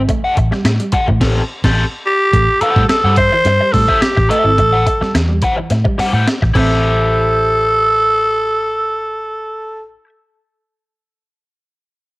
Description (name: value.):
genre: funk.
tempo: 107 BPM.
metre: 4/4.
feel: straight.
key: A dorian.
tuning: A4 = 439 Hz.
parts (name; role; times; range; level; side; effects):
electric guitar at the edge of break-up; riff; 0.0-6.9 s; E3 to C4; -23 LUFS; right 3 dB; none.
vintage muted fingered electric bass; bass; 0.0-10.0 s; G#1 to A2; -16 LUFS; equal; none.
overdriven semi-hollow guitar; accompaniment; 0.1-10.1 s; C4 to F#5; -20 LUFS; left 2 dB; wah.
breakbeat sampler-style drum kit; drums; 0.1-6.7 s; crash cymbal, hi-hat, kick drum, snare drum; -18 LUFS; equal; cassette tape.
growling tenor saxophone; melody; 2.1-9.8 s; G4 to C5; -14 LUFS; equal; cassette tape.
room: light reverb, digital ambience.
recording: home recording on cassette.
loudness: -12 LUFS.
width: side -21 dB against mid.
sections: 0.0-2.3 A section; 2.3-6.8 B section; 6.8-9.1 C section.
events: band accent 1.2-2.3.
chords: 0.0 Am7.